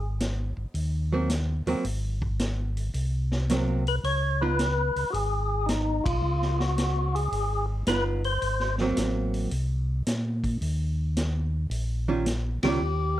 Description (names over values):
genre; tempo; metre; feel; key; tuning
soul jazz organ trio; 110 BPM; 4/4; swing 68% on 8ths; Ab major; A4 = 436 Hz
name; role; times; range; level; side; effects
mellow tonewheel organ; bass; 0.0-13.2 s; G1 to Bb2; -27 LUFS; equal; slow rotary speaker
vintage drum kit; drums; 0.2-12.7 s; hi-hat, kick drum, ride cymbal, snare drum; -33 LUFS; equal; none
archtop guitar, miked and amplified; accompaniment; 1.1-4.6, 7.9-12.8 s; Eb3 to F4; -27 LUFS; right 3 dB; none
percussive tonewheel organ; melody; 3.9-8.8, 12.6-13.2 s; Eb4 to Db5; -28 LUFS; left 2 dB; slow rotary speaker, overdrive, plate reverb
room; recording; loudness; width
light reverb; dark, warm production; -24 LUFS; side -13 dB against mid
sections
0.0-13.2 A section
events
band accent 6.0, 12.5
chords
0.0 Ab9; 4.0 Db7; 8.4 Ab9; 10.6 Eb7